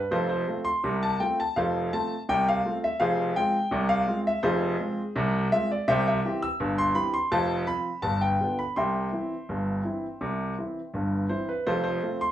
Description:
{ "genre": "ragtime piano", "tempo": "83 BPM", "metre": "2/4", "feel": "straight", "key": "unclear", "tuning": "A4 = 440 Hz", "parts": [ { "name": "clear grand piano", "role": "solo", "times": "0.0-12.3 s", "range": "F1 to E6", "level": "-24 LUFS", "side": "equal", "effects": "none" } ], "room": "wet club reverb, RT60 0.5 s", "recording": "heard from further back in the room", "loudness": "-24 LUFS", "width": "side -12 dB against mid", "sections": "0.1-11.7 A section", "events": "none", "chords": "0.1 F; 3.0 Fm; 5.9 C; 7.3 F; 8.0 G7; 8.8 C; 11.7 F", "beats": "| 0.11 0.84 | 1.56 2.28 | 3.00 3.72 | 4.44 5.16 | 5.88 6.60 | 7.32 8.04 | 8.77 9.49 | 10.22 10.95 | 11.68" }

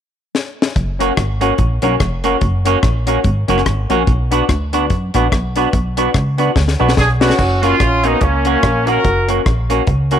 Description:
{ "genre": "ska", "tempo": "145 BPM", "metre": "4/4", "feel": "swing 58% on 8ths", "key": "F# major", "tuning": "A4 = 440 Hz", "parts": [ { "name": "deep reggae drum kit", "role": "drums", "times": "0.3-10.2 s", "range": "crash cymbal, hi-hat, kick drum, rim click, snare drum", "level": "-18 LUFS", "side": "left 2 dB", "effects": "none" }, { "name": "plucky analog bass", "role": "bass", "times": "0.8-10.2 s", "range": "E#1 to F#2", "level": "-17 LUFS", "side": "equal", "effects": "transformer saturation" }, { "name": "semi-hollow electric guitar", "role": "accompaniment", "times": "1.0-10.2 s", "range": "A#3 to F#4", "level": "-19 LUFS", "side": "right 11 dB", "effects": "slapback echo" }, { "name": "warm upright piano", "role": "stabs", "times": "1.0-10.2 s", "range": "C#4 to B4", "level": "-21 LUFS", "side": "left 13 dB", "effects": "none" }, { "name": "clear horn section", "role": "melody", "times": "7.0-9.3 s", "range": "A#3 to A#4", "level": "-16 LUFS", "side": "right 1 dB", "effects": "none" } ], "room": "light reverb, small room ambience", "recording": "1960s-style stereo with parts hard left and right", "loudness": "-13 LUFS", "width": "side -9 dB against mid", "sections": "0.8-7.4 A section; 7.4-10.2 B section", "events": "drum fill 0.3-0.8, 6.6-7.4", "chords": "0.0 N.C.; 0.8 F#; 4.1 Bm; 7.4 F#", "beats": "0.34 | 0.76 1.17 1.59 2.00 | 2.41 2.83 3.24 3.66 | 4.07 4.49 4.90 5.32 | 5.73 6.14 6.56 6.97 | 7.39 7.80 8.22 8.63 | 9.05 9.46 9.88" }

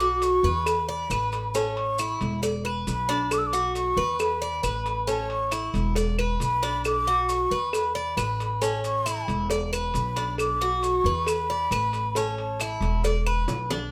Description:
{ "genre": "latin, Cuban son and guajira", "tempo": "136 BPM", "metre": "4/4", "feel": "straight", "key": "unclear", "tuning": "A4 = 435 Hz", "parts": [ { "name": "mellow hollow concert flute", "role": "melody", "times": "0.0-13.0 s", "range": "A5 to E6", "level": "-29 LUFS", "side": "equal", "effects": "none" }, { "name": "Cuban tres", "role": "arpeggios", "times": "0.0-13.9 s", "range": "C#4 to D5", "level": "-31 LUFS", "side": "equal", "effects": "none" }, { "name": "upright bass", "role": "bass", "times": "0.0-13.9 s", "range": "E1 to E2", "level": "-32 LUFS", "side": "equal", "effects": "none" }, { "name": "cowbell and bongos", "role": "percussion", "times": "0.0-13.9 s", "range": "none", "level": "-34 LUFS", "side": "equal", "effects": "none" }, { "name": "maracas", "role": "percussion", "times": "0.2-13.9 s", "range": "none", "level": "-42 LUFS", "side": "equal", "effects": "none" }, { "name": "claves", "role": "percussion", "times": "0.7-13.5 s", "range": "none", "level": "-37 LUFS", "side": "equal", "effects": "none" } ], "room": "moderate studio reverb, RT60 0.8 s", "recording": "none", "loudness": "-26 LUFS", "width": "mono", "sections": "0.0-13.9 A section", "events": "drum fill 13.5-13.9", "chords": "0.0 Bm; 0.7 E5; 1.5 A; 2.4 E5; 3.3 Bm; 4.2 E5; 5.1 A; 6.0 E5; 6.8 Bm; 7.7 E5; 8.6 A; 9.5 E5; 10.4 Bm; 11.3 E5; 12.2 A; 13.0 E5", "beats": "0.22 0.66 1.10 | 1.54 1.99 2.43 2.87 | 3.31 3.75 4.19 4.64 | 5.08 5.52 5.96 6.40 | 6.85 7.29 7.73 8.17 | 8.62 9.06 9.50 9.94 | 10.38 10.83 11.27 11.71 | 12.15 12.60 13.04 13.48" }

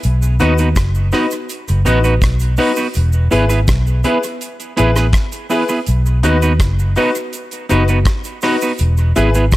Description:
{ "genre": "roots reggae", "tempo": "82 BPM", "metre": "4/4", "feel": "straight", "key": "E major", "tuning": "A4 = 442 Hz", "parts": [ { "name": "damped 70s drum kit", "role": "drums", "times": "0.0-9.6 s", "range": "hi-hat, kick drum, rim click", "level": "-20 LUFS", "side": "equal", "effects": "dub echo" }, { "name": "cabasa", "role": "percussion", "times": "0.0-9.6 s", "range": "none", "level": "-32 LUFS", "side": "right 6 dB", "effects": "none" }, { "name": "vintage muted fingered electric bass", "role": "bass", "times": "0.1-9.6 s", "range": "E1 to D#2", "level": "-14 LUFS", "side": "equal", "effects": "none" }, { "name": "clean electric guitar", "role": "accompaniment", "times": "0.4-9.4 s", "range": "B3 to B4", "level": "-19 LUFS", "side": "right 3 dB", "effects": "dub echo" }, { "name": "bright upright piano", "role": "stabs", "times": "0.4-9.3 s", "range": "D#4 to B4", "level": "-21 LUFS", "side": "left 4 dB", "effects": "none" } ], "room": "light reverb", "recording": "none", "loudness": "-13 LUFS", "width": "side -17 dB against mid", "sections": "0.0-9.6 A section", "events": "none", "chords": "0.0 B; 3.0 E; 5.9 B; 8.8 E", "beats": "| 0.03 0.76 1.49 2.22 | 2.95 3.68 4.41 5.14 | 5.87 6.60 7.33 8.06 | 8.79 9.53" }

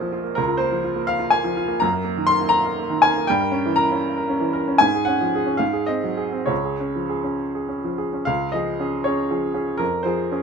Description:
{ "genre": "classical, romantic character piece for solo piano", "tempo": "63-86 BPM (dotted quarters)", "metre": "6/8", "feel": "rubato", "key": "Db major", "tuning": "A4 = 439 Hz", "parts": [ { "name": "clear upright piano", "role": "solo", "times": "0.0-10.4 s", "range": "Bb1 to C6", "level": "-19 LUFS", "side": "equal", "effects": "none" } ], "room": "light reverb", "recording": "none", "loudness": "-19 LUFS", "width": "side -6 dB against mid", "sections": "0.0-8.3 A section; 8.3-10.4 A section", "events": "none", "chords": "0.4 Bbm/Db; 1.8 Ebm/Gb; 3.3 Gdim7; 4.8 Db/Ab; 5.6 Ab7; 6.5 Db; 9.8 Db/F", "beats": "| 0.38 1.10 | 1.83 2.56 | 3.29 4.03 | 4.81 5.61 | 6.50 7.42 | 8.29 9.06 | 9.80" }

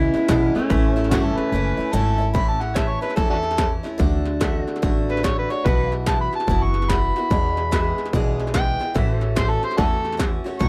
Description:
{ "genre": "honky-tonk and classic country", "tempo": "145 BPM", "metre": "4/4", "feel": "swing 64% on 8ths", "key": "A major", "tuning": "A4 = 440 Hz", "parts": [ { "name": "pedal steel guitar", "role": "melody", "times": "0.0-1.9 s", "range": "A3 to E4", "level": "-24 LUFS", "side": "equal", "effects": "none" }, { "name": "picked acoustic archtop guitar", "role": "accompaniment", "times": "0.0-10.7 s", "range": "E2 to G#4", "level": "-30 LUFS", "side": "equal", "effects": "none" }, { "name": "pedal steel guitar", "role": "sustained chords", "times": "0.0-10.6 s", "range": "F#4 to A5", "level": "-36 LUFS", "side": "equal", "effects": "lush chorus" }, { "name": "upright bass", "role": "bass", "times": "0.0-10.7 s", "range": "F#1 to E2", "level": "-27 LUFS", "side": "equal", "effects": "none" }, { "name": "industrial drum kit", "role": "drums", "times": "0.1-10.7 s", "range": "hi-hat, kick drum, snare drum", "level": "-26 LUFS", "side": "equal", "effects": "distortion, overdrive" }, { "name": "overdriven harmonica", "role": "second line", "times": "1.1-10.7 s", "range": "D4 to C#6", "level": "-26 LUFS", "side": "equal", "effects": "none" } ], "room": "little or no reverb", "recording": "dry, close 1970s-style studio recording", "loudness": "-21 LUFS", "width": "mono", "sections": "0.0-2.3 A section; 2.3-10.7 B section", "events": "break 1.5-2.3; harmonica solo 2.3-10.7", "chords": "0.0 E; 0.7 A; 4.0 D; 5.7 Bsus4; 7.3 E; 9.0 A6", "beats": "0.29 | 0.70 1.11 1.52 1.94 | 2.35 2.76 3.17 3.59 | 4.00 4.41 4.83 5.24 | 5.65 6.07 6.48 6.89 | 7.30 7.72 8.13 8.54 | 8.96 9.37 9.78 10.19 | 10.61" }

